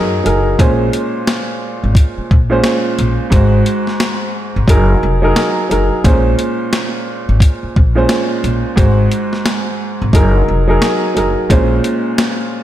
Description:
hip hop, boom-bap hip-hop; 88 BPM; 4/4; swing 63% on 16ths; Bb minor; A4 = 440 Hz
warm upright piano; accompaniment; 0.0-12.6 s; Ab2 to C5; -16 LUFS; right 1 dB; high-pass filter, low-pass filter
upright bass; bass; 0.0-11.8 s; F1 to Gb2; -14 LUFS; equal
boom bap sampler-style drum kit; drums; 0.3-12.4 s; hi-hat, kick drum, snare drum; -15 LUFS; equal
moderate lush hall reverb, RT60 2.0 s; dreamy mix soaked in reverb; -11 LUFS; side -12 dB against mid
0.0-12.6 A section
0.0 Gb69; 0.6 Bbm9; 3.3 Ab7; 4.7 Gb69; 6.0 Bbm9; 8.8 Ab7; 10.1 Gb69; 11.5 Bbm9
| 0.59 1.27 1.96 2.64 | 3.32 4.00 4.68 5.36 | 6.05 6.73 7.41 8.09 | 8.77 9.46 10.14 10.82 | 11.50 12.18

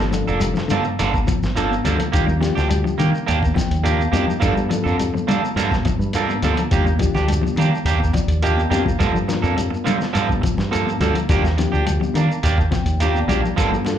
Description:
afrobeat; 105 BPM; 4/4; straight; A4 = 441 Hz
semi-hollow electric guitar; arpeggios; 0.0-13.8 s; D3 to G3; -26 LUFS; left 6 dB; spring reverb, slapback echo
electric guitar at the edge of break-up; stabs; 0.0-13.9 s; F3 to A4; -23 LUFS; right 6 dB; plate reverb, slapback echo
fingered electric bass; bass; 0.0-13.9 s; F1 to G3; -21 LUFS; equal
lo-fi sampler-style drum kit; drums; 0.0-14.0 s; hi-hat, kick drum, snare drum; -24 LUFS; equal
reed electric piano; accompaniment; 0.1-14.0 s; Bb3 to G5; -26 LUFS; left 4 dB; overdrive, plate reverb, slapback echo
congas; percussion; 0.1-14.0 s; -30 LUFS; left 5 dB; slapback echo
shekere; percussion; 0.1-14.0 s; -31 LUFS; left 1 dB; slapback echo
light reverb; live gig heard through the venue's PA, club reverb; -17 LUFS; side -10 dB against mid
0.0-14.0 A section
reed electric piano fill 3.3-4.4, 7.9-9.0, 12.4-13.6
0.0 Gm9; 2.1 Ebmaj7; 4.4 Gm9; 6.7 Ebmaj7; 9.0 Gm9; 11.3 Ebmaj7
0.42 0.99 1.56 | 2.13 2.71 3.28 3.85 | 4.42 5.00 5.57 6.14 | 6.71 7.29 7.86 8.44 | 9.01 9.58 10.15 10.73 | 11.30 11.87 12.45 13.02 | 13.59

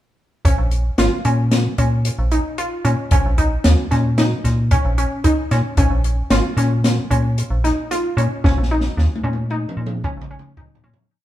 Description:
progressive instrumental, band music in an uneven meter; 113 BPM; 5/4; straight; Bb minor; A4 = 440 Hz
metallic FM bass; bass; 0.4-10.9 s; Ab1 to Bb2; -18 LUFS; equal
open jazz drum kit; drums; 0.4-11.1 s; hi-hat, kick drum, snare drum, toms; -20 LUFS; equal
glassy wavetable pluck; arpeggios; 0.5-11.0 s; Db4 to F4; -22 LUFS; equal; chorus, ping-pong delay
moderate large studio reverb, RT60 1.3 s; band playing live in one room; -16 LUFS; side -13 dB against mid
0.5-11.1 groove
fade-out 8.4-11.1; drum fill 8.4-11.1
0.5 Bbm; 3.1 Bbmadd11; 5.8 Bbm; 8.4 Bbmadd11
| 0.45 0.98 1.52 2.05 2.58 | 3.12 3.65 4.18 4.71 5.25 | 5.78 6.31 6.84 7.37 7.91 | 8.44 8.97 9.50 10.04 10.57

